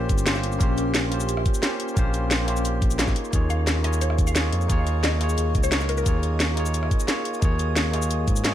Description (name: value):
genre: liquid drum and bass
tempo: 176 BPM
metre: 4/4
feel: straight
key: unclear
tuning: A4 = 440 Hz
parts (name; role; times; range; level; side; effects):
- bell-like tine electric piano; accompaniment; 0.0-8.5 s; Bb3 to Db5; -28 LUFS; equal; ping-pong delay
- ethereal airy pad; sustained chords; 0.0-8.5 s; Db4 to Eb6; -33 LUFS; left 1 dB; ensemble chorus, built-in reverb, phaser, sidechain pumping
- smooth synth bass; bass; 0.0-8.5 s; G1 to Ab2; -25 LUFS; equal; none
- drum and bass drum kit; drums; 0.1-8.5 s; hi-hat, rim click, shaker, snare drum; -26 LUFS; equal; none
- electronic kick drum; drums; 0.1-8.3 s; none; -22 LUFS; equal; none
- mallet-like synth pluck; melody; 3.5-6.0 s; Bb4 to F5; -34 LUFS; left 2 dB; analog chorus, dub echo
room: digital ambience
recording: none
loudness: -20 LUFS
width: side -11 dB against mid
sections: 0.0-8.5 A section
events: none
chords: 0.0 Bbm69; 3.2 Eb7sus4